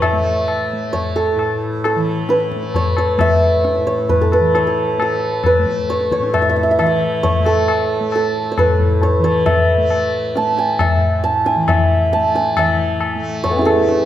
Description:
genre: indian classical, Hindustani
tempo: 134 BPM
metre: 7/4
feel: straight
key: A raga hamsadhwani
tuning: A4 = 435 Hz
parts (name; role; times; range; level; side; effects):
- santur; melody; 0.0-14.1 s; A3 to A5; -16 LUFS; right 1 dB; none
- tanpura; drone; 0.0-14.1 s; A2 to A3; -24 LUFS; equal; none
- tabla; percussion; 0.0-14.1 s; none; -19 LUFS; left 2 dB; none
room: wet scoring stage reverb, RT60 1.6 s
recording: none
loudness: -14 LUFS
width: side -12 dB against mid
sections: 0.0-12.6 A section; 12.6-14.1 B section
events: speeding up 0.0-14.1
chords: none

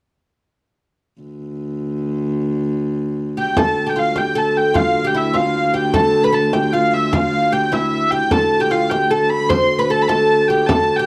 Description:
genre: medieval dance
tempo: 101 BPM (dotted quarters)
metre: 6/8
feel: straight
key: D dorian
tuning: A4 = 438 Hz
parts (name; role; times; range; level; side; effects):
- clear viola da gamba; drone; 1.2-11.1 s; D2; -24 LUFS; equal; none
- clear hurdy-gurdy; melody; 3.4-11.1 s; E5 to C6; -21 LUFS; equal; none
- oud; second line; 3.4-11.1 s; E4 to C5; -21 LUFS; equal; none
- frame drum; percussion; 3.6-11.0 s; none; -23 LUFS; equal; none
room: light reverb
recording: dry, close 1970s-style studio recording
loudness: -17 LUFS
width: mono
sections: 1.2-3.6 A section; 3.6-11.1 B section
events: none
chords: none

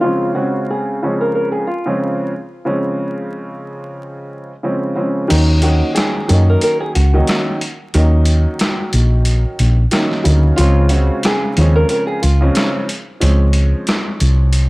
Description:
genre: hip hop, boom-bap hip-hop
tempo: 91 BPM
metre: 4/4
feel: swing 56% on 16ths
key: Eb dorian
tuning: A4 = 440 Hz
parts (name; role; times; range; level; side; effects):
- flamenco guitar; melody; 0.0-12.7 s; Eb4 to Bb4; -20 LUFS; equal; high-pass filter, low-pass filter
- dark upright piano; accompaniment; 0.0-14.7 s; Db3 to Eb4; -20 LUFS; equal; high-pass filter, low-pass filter
- hollow-body short-scale fingered electric bass; bass; 5.3-14.7 s; Bb1 to Gb2; -11 LUFS; equal; none
- dusty soul sampler-style drum kit; drums; 5.3-14.7 s; crash cymbal, hi-hat, rim click, snare drum; -20 LUFS; equal; none
room: little or no reverb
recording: dry, gritty hardware recording, transformer saturation, vinyl crackle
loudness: -13 LUFS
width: side -22 dB against mid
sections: 0.0-5.3 A section; 5.3-14.7 B section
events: kick muted 5.3-14.7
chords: 0.0 Dbmaj7; 5.3 Ebm7; 10.6 Dbmaj7

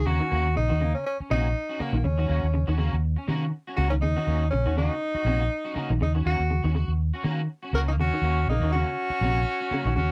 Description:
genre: afrobeat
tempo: 121 BPM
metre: 4/4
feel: swing 56% on 16ths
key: Eb dorian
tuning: A4 = 440 Hz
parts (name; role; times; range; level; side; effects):
- warm tenor saxophone; melody; 0.0-10.1 s; Bb3 to Bb4; -31 LUFS; equal; none
- electric guitar at the edge of break-up; arpeggios; 0.0-10.1 s; C3 to Eb3; -34 LUFS; equal; ensemble chorus
- fingered electric bass; bass; 0.0-10.1 s; Bb1 to Eb3; -27 LUFS; equal; none
- electric guitar at the edge of break-up; stabs; 0.1-9.9 s; Bb3 to Gb4; -37 LUFS; equal; ensemble chorus
- bright trumpet; second line; 7.8-10.1 s; Bb3 to Gb4; -37 LUFS; equal; none
room: little or no reverb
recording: dry, close 1970s-style studio recording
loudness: -26 LUFS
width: mono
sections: 0.1-10.1 A section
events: none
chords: 0.1 Ebm7

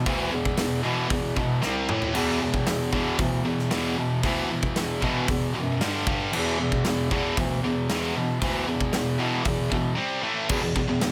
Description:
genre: heavy metal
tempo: 115 BPM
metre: 4/4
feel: straight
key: E minor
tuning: A4 = 444 Hz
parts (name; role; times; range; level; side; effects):
- distorted electric guitar; riff; 0.0-11.1 s; E2 to E3; -34 LUFS; equal; distortion
- heavy high-gain guitar; riff; 0.0-11.1 s; E2 to C4; -32 LUFS; equal; distortion
- tight distorted guitar; riff; 0.0-11.1 s; E2 to C4; -31 LUFS; equal; distortion
- warm bass clarinet; bass; 0.0-11.1 s; C2 to B2; -32 LUFS; equal; none
- big rock drum kit; drums; 0.1-11.1 s; crash cymbal, hi-hat, kick drum, snare drum, toms; -31 LUFS; equal; none
room: small room ambience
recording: none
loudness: -25 LUFS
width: mono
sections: 0.0-10.5 A section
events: drum fill 1.6-2.2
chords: 0.0 E5; 1.6 C5; 1.9 A5; 2.2 E5; 5.8 G5; 6.3 E5; 10.0 C5; 10.2 A5; 10.5 E5

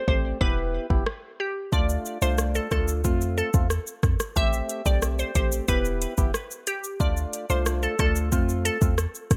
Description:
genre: dancehall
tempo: 91 BPM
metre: 4/4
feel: straight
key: unclear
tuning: A4 = 441 Hz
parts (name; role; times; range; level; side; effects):
- glassy wavetable pluck; melody; 0.0-8.8 s; G4 to E5; -32 LUFS; equal; chorus, delay
- percussive organ stab; accompaniment; 0.0-9.0 s; A3 to G4; -33 LUFS; equal; chorus, phaser, sidechain pumping
- warm 808-style bass; bass; 0.1-9.4 s; E1 to F2; -29 LUFS; equal; none
- afro-pop drum kit; drums; 0.1-9.4 s; hi-hat, kick drum, rim click, shaker; -28 LUFS; equal; none
room: digital ambience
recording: none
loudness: -25 LUFS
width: mono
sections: 0.0-9.4 A section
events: none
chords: 0.4 Em; 1.7 Dm; 3.0 F; 4.4 Am7; 5.7 Em; 7.0 Dm; 8.3 F

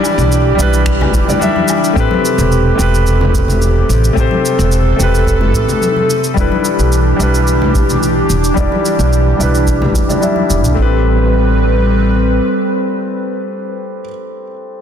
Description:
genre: sunset chillout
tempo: 109 BPM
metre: 4/4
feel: straight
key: A minor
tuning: A4 = 440 Hz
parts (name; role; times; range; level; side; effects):
- clear concert grand piano; accompaniment; 0.0-14.8 s; G3 to E5; -16 LUFS; moving between left 6 dB and right 2 dB; auto-pan, low-pass filter, digital delay
- airy breathy pad; sustained chords; 0.0-13.7 s; C3 to B4; -17 LUFS; right 1 dB; chorus
- woodblock, cabasa and finger snaps; drums; 0.0-10.7 s; none; -24 LUFS; right 1 dB; none
- upright bass; bass; 0.2-12.4 s; E1 to B1; -14 LUFS; equal; none
- electronic kick drum; drums; 0.9-10.9 s; none; -17 LUFS; equal; none
- congas; percussion; 1.0-10.5 s; none; -21 LUFS; left 3 dB; none
room: moderate concert hall reverb, RT60 1.9 s, studio reverb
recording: dense, heavily limited modern master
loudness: -10 LUFS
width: side -8 dB against mid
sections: 0.0-10.8 A section; 10.8-13.0 B section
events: filter sweep on upright bass 0.0-10.8; filter sweep on grand piano 0.0-10.8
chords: 0.0 Em7; 2.0 Am9; 6.4 Em7; 10.8 Am9

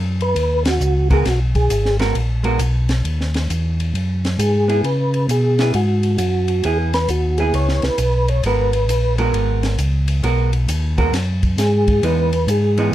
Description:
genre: soul jazz organ trio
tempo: 134 BPM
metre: 4/4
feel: swing 66% on 8ths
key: G# minor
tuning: A4 = 436 Hz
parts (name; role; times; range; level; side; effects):
- mellow tonewheel organ; bass; 0.0-12.9 s; G#1 to C#3; -18 LUFS; equal; overdrive, chorus vibrato, slow rotary speaker
- percussive tonewheel organ; melody; 0.2-12.9 s; F#4 to C#5; -20 LUFS; equal; slow rotary speaker, chorus vibrato
- compact cocktail drum kit; drums; 0.2-12.8 s; hi-hat, kick drum, ride cymbal, snare drum; -25 LUFS; equal; none
- vintage hollow-body jazz guitar; accompaniment; 1.1-12.9 s; E3 to A#4; -22 LUFS; right 4 dB; none
room: light reverb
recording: dark, warm production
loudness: -15 LUFS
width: side -13 dB against mid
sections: 0.0-12.9 A section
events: band accent 0.6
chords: 0.0 G#m9; 4.8 C#m7; 8.4 G#m9; 12.0 Emaj7

